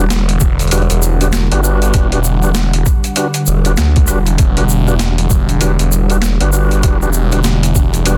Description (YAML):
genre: glitch hop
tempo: 98 BPM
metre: 4/4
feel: swing 61% on 16ths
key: E minor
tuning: A4 = 438 Hz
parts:
  - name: warm analog pad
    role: sustained chords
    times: 0.0-8.2 s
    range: D3 to F#5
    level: -22 LUFS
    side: equal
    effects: chorus, vintage 12-bit sampler grit, sidechain pumping
  - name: tonewheel organ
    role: stabs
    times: 0.0-8.2 s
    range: D4 to B4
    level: -24 LUFS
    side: equal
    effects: overdrive, fast rotary speaker, sidechain pumping, dub echo
  - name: phased detuned saw bass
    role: bass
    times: 0.0-8.2 s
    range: E1 to D2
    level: -16 LUFS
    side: equal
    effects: phaser, overdrive
  - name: boom bap sampler-style drum kit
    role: drums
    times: 0.1-8.2 s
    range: hi-hat, rim click, snare drum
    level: -23 LUFS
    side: equal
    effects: overdrive
  - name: tube shaker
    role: percussion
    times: 0.1-8.2 s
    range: none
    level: -26 LUFS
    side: equal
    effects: none
  - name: electronic kick drum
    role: drums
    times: 0.4-7.9 s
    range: none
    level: -16 LUFS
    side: equal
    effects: overdrive
room: digital ambience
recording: dense, heavily limited modern master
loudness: -13 LUFS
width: mono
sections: 0.0-8.2 A section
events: none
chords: 0.0 Em9